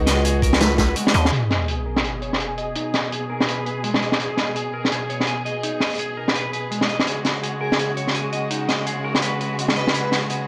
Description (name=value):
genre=half-time drum and bass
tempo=167 BPM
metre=4/4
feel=swing 59% on 16ths, half-time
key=G# minor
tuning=A4 = 441 Hz
part: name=dark chamber string section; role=sustained chords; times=0.0-10.5 s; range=B2 to G#4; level=-30 LUFS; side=equal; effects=sidechain pumping, low-pass filter
part: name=clean electric guitar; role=arpeggios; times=0.0-10.5 s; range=G#3 to G#5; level=-31 LUFS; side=equal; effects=low-pass filter, analog delay
part: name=growling 808-style bass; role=bass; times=0.0-1.3 s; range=C#2 to D#2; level=-22 LUFS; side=equal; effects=none
part: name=vintage drum kit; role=drums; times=0.1-10.4 s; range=hi-hat, snare drum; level=-24 LUFS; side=equal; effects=low-pass filter on hats, low-pass filter on snare, low-pass filter on room
part: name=electronic kick drum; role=drums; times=0.4-0.9 s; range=none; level=-24 LUFS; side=equal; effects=overdrive
part: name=sub drop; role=sound effects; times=1.3-2.8 s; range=none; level=-28 LUFS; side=equal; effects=none
part: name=airy dreamy lead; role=melody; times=7.6-10.1 s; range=G#4 to B4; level=-32 LUFS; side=equal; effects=chorus, phaser, analog delay
room=light reverb, small room reverb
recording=dry, gritty hardware recording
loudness=-22 LUFS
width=mono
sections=0.0-1.3 A section; 1.3-10.5 B section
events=drop 0.0-1.3; kick drops out 1.0-1.3; impact 1.3-2.8; filter sweep on clean electric guitar 1.3-10.5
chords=0.0 C#sus4; 1.3 G#madd9; 7.1 C#sus4